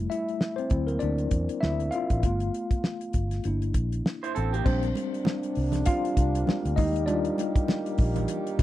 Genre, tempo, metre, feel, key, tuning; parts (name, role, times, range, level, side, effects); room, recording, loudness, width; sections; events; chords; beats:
lush 1970s-style soul; 99 BPM; 4/4; swing 58% on 16ths; A4 = 440 Hz
mellow tine electric piano; accompaniment; 0.0-8.6 s; F#3 to F5; -29 LUFS; left 2 dB; medium stereo tremolo
vintage muted fingered electric bass; bass; 0.0-8.6 s; G1 to E2; -28 LUFS; equal
damped 70s drum kit; drums; 0.1-8.6 s; crash cymbal, hi-hat, kick drum, snare drum; -26 LUFS; equal
electric guitar through a small old amp; riff; 4.2-4.8 s; Bb3 to C5; -30 LUFS; right 6 dB
warm French horn section; sustained chords; 4.6-8.6 s; C3 to G4; -34 LUFS; right 3 dB
congas; percussion; 4.7-8.6 s; -36 LUFS; right 8 dB
little or no reverb; dry, close 1970s-style studio recording; -24 LUFS; side -14 dB against mid
0.0-4.7 A section; 4.7-8.6 B section
tine electric piano solo 0.0-4.7, 4.7-8.6
0.0 Fmaj9 (rootless); 0.7 D7; 2.2 G9; 3.4 Gm69; 4.7 Bb69; 6.8 Ebmaj7
0.41 1.01 1.62 | 2.23 2.84 3.44 4.05 | 4.66 5.26 5.87 6.48 | 7.08 7.69 8.29